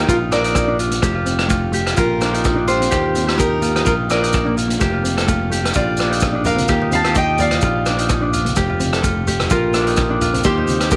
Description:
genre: highlife guitar band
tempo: 127 BPM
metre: 4/4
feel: straight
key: Bb major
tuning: A4 = 440 Hz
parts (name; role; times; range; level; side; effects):
- picked steel-string acoustic guitar; melody; 0.0-11.0 s; F4 to A5; -22 LUFS; equal; none
- mellow electric guitar; accompaniment; 0.0-11.0 s; A3 to D4; -28 LUFS; equal; none
- Celtic harp; arpeggios; 0.0-11.0 s; Bb3 to A4; -24 LUFS; equal; slapback echo
- fingered electric bass; bass; 0.0-11.0 s; F1 to Eb2; -24 LUFS; equal; none
- vintage drum kit; drums; 0.1-11.0 s; hi-hat, kick drum, rim click; -23 LUFS; equal; none
- maracas; percussion; 0.1-11.0 s; none; -34 LUFS; equal; none
- congas; percussion; 6.5-10.8 s; none; -30 LUFS; equal; none
room: light reverb, small room ambience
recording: none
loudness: -17 LUFS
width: mono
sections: 0.0-11.0 A section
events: none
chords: 0.1 Bb; 1.0 F; 2.0 Bb; 2.9 Ebadd9; 3.9 Bb; 4.8 F; 5.7 Bb; 6.7 Ebadd9; 7.6 Bb; 8.6 F; 9.5 Bb; 10.4 Ebadd9

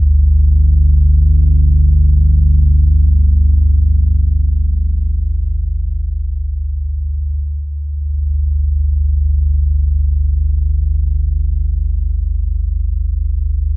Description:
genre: ambient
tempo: free time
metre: none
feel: none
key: unclear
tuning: A4 = 440 Hz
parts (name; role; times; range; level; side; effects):
- deep rumbling drone; solo; 0.0-13.8 s; G1 to D2; -12 LUFS; equal; built-in reverb
room: wet cathedral reverb, RT60 5.5 s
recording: none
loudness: -12 LUFS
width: side -21 dB against mid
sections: 0.0-7.4 A section; 7.4-13.8 B section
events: none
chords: 0.0 G5

